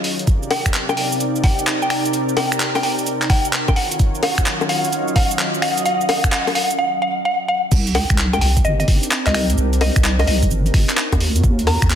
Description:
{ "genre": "UK garage, two-step garage", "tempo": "129 BPM", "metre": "4/4", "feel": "swing 66% on 16ths", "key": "C minor", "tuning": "A4 = 439 Hz", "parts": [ { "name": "mallet-like synth pluck", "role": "melody", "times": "0.0-11.8 s", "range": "Eb5 to Bb5", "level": "-22 LUFS", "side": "equal", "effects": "chorus, cassette tape, dub echo" }, { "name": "warm analog pad", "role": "sustained chords", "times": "0.0-12.0 s", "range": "C3 to Eb5", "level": "-28 LUFS", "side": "equal", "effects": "chorus, sidechain pumping" }, { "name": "breakbeat sampler-style drum kit", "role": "drums", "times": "0.0-12.0 s", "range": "bongos, crash cymbal, finger snaps, handclaps, hi-hat, shaker", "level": "-21 LUFS", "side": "left 1 dB", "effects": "small room ambience, soft clipping on snare" }, { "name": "warbly tape-like pad", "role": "texture", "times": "0.0-12.0 s", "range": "Gb3 to Bb5", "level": "-26 LUFS", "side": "equal", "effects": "chorus, built-in reverb, sidechain pumping" }, { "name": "electronic kick drum", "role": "drums", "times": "0.3-11.9 s", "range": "none", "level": "-17 LUFS", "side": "equal", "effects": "small room ambience" }, { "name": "deep soft wobble bass", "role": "bass", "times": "7.7-12.0 s", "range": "G1 to Eb2", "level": "-18 LUFS", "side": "equal", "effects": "chorus" } ], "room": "moderate digital room reverb, RT60 1.1 s, digital ambience", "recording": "dense, heavily limited modern master", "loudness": "-15 LUFS", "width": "side -9 dB against mid", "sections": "0.0-7.7 A section; 7.7-12.0 B section", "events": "build-up 0.0-7.7; drop 7.7-12.0", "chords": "0.3 Cm9; 3.8 Ebm9; 7.7 Cm9; 11.2 Ebm9" }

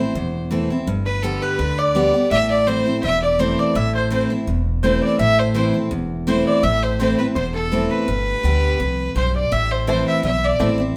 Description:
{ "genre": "bluegrass", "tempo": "167 BPM", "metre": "4/4", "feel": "straight", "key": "A minor", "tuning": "A4 = 440 Hz", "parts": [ { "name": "clear fiddle", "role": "melody", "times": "0.0-10.8 s", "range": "A4 to E5", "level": "-24 LUFS", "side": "equal", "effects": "none" }, { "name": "lap resonator guitar", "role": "second line", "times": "0.0-10.8 s", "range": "A4 to E5", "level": "-30 LUFS", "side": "equal", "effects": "none" }, { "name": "picked steel-string acoustic guitar", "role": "accompaniment", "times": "0.0-11.0 s", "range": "E2 to G4", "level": "-23 LUFS", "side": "equal", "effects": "none" }, { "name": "upright bass", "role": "bass", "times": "0.2-10.9 s", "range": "E1 to D2", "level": "-26 LUFS", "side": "equal", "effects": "none" }, { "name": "bluegrass banjo", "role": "melody", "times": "9.9-10.7 s", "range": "A3 to E4", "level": "-32 LUFS", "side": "equal", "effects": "none" }, { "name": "mandolin", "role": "stabs", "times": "9.9-10.7 s", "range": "C4 to A5", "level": "-43 LUFS", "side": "equal", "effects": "none" } ], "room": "wet studio reverb, RT60 0.9 s", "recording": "heard from further back in the room", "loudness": "-19 LUFS", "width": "mono", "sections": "0.0-11.0 A section", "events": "none", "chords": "0.0 Am; 0.9 G; 2.3 Am; 8.1 G; 9.5 Am" }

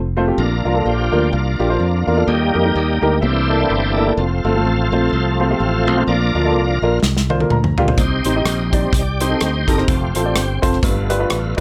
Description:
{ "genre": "uptempo gospel", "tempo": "126 BPM", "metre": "4/4", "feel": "swing 57% on 8ths", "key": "Bb major", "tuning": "A4 = 441 Hz", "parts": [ { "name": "modern bright fingered electric bass", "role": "bass", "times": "0.0-11.6 s", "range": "F1 to F2", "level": "-22 LUFS", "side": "equal", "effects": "none" }, { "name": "warm upright piano", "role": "accompaniment", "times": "0.2-11.6 s", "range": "G2 to Bb5", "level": "-22 LUFS", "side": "equal", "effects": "none" }, { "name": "bright tonewheel organ", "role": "sustained chords", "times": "0.4-11.5 s", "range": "E3 to D5", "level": "-23 LUFS", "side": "equal", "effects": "slow rotary speaker, overdrive, chorus vibrato" }, { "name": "natural country drum kit", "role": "drums", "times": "7.0-11.6 s", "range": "hi-hat, kick drum, rim click, snare drum, toms", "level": "-21 LUFS", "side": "equal", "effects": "none" } ], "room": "light reverb", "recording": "none", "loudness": "-17 LUFS", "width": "mono", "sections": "0.0-11.6 A section", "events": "tonewheel organ solo 0.0-11.6; drum fill 7.0-8.0; upright piano fill 7.3-8.0", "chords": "0.4 Bb; 2.3 Eb; 3.2 C13; 4.2 F; 6.1 Bb; 8.0 Cm; 9.9 F; 10.8 G7" }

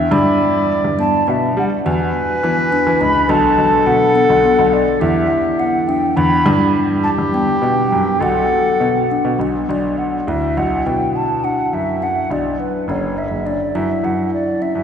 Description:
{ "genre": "contemporary instrumental, chamber music in an uneven meter", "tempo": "208 BPM (eighths)", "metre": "11/8", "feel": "straight", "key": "B minor", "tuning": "A4 = 441 Hz", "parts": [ { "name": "warm clarinet", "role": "second line", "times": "0.0-9.4 s", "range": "G4 to E5", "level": "-19 LUFS", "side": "left 2 dB", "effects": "none" }, { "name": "warm concert grand piano", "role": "bass", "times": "0.0-14.8 s", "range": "F#1 to G3", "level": "-20 LUFS", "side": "right 1 dB", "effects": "none" }, { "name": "mellow hollow jazz flute", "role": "melody", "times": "0.1-14.8 s", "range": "B4 to B5", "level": "-19 LUFS", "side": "right 2 dB", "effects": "none" }, { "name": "kalimba", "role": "arpeggios", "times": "0.1-14.8 s", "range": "B3 to F#4", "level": "-20 LUFS", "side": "left 3 dB", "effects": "none" } ], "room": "wet cathedral reverb, RT60 4.5 s", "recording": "recorded in a church or concert hall", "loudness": "-14 LUFS", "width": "side -8 dB against mid", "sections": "0.0-9.7 A section; 9.7-14.8 B section", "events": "none", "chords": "0.1 G; 1.9 E13; 3.3 Bm7; 5.0 Em7; 6.5 G; 8.2 Bm7; 9.7 Bm; 12.9 F#7(no3)" }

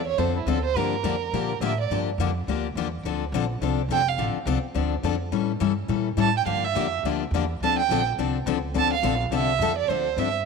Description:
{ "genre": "acoustic string swing (jazz manouche)", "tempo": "210 BPM", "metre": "4/4", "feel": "swing 57% on 8ths", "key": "D minor", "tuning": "A4 = 440 Hz", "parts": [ { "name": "warm violin", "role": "melody", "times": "0.0-1.9, 3.9-4.2, 6.2-10.3 s", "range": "E4 to A5", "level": "-26 LUFS", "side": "right 12 dB", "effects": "none" }, { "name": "upright bass", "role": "bass", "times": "0.0-10.4 s", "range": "F1 to Bb2", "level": "-28 LUFS", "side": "right 1 dB", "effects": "none" }, { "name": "picked steel-string acoustic guitar", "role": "accompaniment", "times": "0.2-10.3 s", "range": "D3 to A4", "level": "-26 LUFS", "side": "left 12 dB", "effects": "none" } ], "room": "light reverb, small room ambience", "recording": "1960s-style stereo with parts hard left and right", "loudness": "-22 LUFS", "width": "side -5 dB against mid", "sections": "0.0-9.9 A section", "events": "violin solo 0.0-10.5", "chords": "0.0 Dm7; 0.8 Gm7; 3.0 Dm7; 5.3 A7b9; 6.5 Gm7; 7.6 Dm7" }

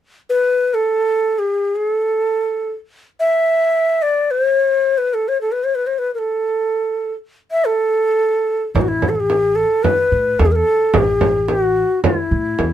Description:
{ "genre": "Arabic maqam ensemble", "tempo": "free time", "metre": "none", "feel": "none", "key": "A maqam rast", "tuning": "A4 = 439 Hz", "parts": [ { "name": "breathy ney", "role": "melody", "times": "0.3-12.7 s", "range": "E4 to E5", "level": "-16 LUFS", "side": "left 1 dB", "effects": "none" }, { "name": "upright bass", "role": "bass", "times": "8.7-12.7 s", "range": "A1 to A2", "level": "-20 LUFS", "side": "equal", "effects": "none" }, { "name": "frame drum", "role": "percussion", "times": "8.8-12.7 s", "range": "none", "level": "-18 LUFS", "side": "right 3 dB", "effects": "none" } ], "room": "light reverb", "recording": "minimal, uncompressed stereo recording", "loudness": "-15 LUFS", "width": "side -10 dB against mid", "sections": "0.0-8.8 A section; 8.8-12.7 B section", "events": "none", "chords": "none" }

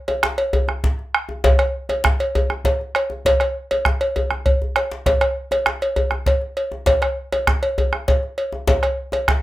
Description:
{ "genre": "west african traditional, West African drum ensemble", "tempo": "133 BPM (dotted quarters)", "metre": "12/8", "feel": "straight", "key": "none", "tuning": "none", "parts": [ { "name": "bombo", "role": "percussion", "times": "0.1-9.4 s", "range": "none", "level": "-20 LUFS", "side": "right 1 dB", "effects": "none" }, { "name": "cowbell", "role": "percussion", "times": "0.1-9.3 s", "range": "none", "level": "-20 LUFS", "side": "equal", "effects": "none" }, { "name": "djembe", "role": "percussion", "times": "0.1-9.4 s", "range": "none", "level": "-24 LUFS", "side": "left 1 dB", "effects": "none" } ], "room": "wet studio ambience, RT60 0.5 s", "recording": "rough home demo mix", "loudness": "-18 LUFS", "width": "side -16 dB against mid", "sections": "0.0-9.4 A section", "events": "drum fill 4.5-5.1", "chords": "none" }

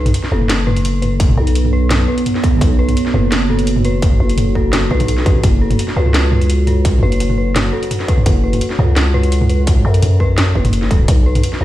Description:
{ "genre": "half-time drum and bass", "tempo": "170 BPM", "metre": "4/4", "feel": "half-time", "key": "unclear", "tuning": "A4 = 438 Hz", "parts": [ { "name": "deep dark ambient pad", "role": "sustained chords", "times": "1.3-11.6 s", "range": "B3 to F#5", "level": "-23 LUFS", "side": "right 2 dB", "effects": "chorus, built-in reverb, sidechain pumping" }, { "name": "dark detuned synth bell", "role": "arpeggios", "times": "0.0-11.6 s", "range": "A4 to B4", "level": "-24 LUFS", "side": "left 1 dB", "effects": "chorus, dub echo" }, { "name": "growling 808-style bass", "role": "bass", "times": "0.0-11.6 s", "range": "F#1 to F#2", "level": "-15 LUFS", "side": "equal", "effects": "none" }, { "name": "drum and bass drum kit", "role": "drums", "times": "0.1-11.6 s", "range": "hi-hat, snare drum, toms", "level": "-18 LUFS", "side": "equal", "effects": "none" }, { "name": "electronic kick drum", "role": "drums", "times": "1.2-11.2 s", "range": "none", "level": "-15 LUFS", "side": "equal", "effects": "distortion" } ], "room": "digital ambience", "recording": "played on a big sound system in a bare room, stone room reverb", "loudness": "-12 LUFS", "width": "side -14 dB against mid", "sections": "0.0-11.6 A section", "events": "none", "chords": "0.0 F#m" }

